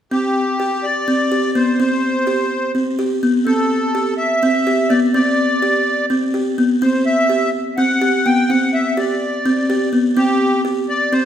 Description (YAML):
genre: contemporary instrumental, chamber music in an uneven meter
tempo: 251 BPM (eighths)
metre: 7/8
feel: straight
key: unclear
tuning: A4 = 440 Hz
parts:
  - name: accordion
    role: melody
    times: 0.1-11.2 s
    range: G4 to G5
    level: -18 LUFS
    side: equal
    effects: light tremolo tuning
  - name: buzzing kalimba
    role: arpeggios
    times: 0.1-11.2 s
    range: B3 to G4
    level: -16 LUFS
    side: equal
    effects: none
room: wet scoring stage reverb, RT60 1.6 s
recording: minimal, uncompressed stereo recording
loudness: -14 LUFS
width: side -9 dB against mid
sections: 0.1-11.2 A section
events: none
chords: 0.1 Csus2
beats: | 0.12 0.36 0.60 0.83 1.07 1.31 1.55 | 1.79 2.03 2.27 2.51 2.75 2.99 3.23 | 3.47 3.71 3.95 4.19 4.43 4.67 4.91 | 5.14 5.38 5.62 5.86 6.10 6.34 6.58 | 6.82 7.06 7.30 7.54 7.78 8.02 8.26 | 8.49 8.73 8.97 9.21 9.45 9.69 9.93 | 10.17 10.41 10.65 10.89 11.13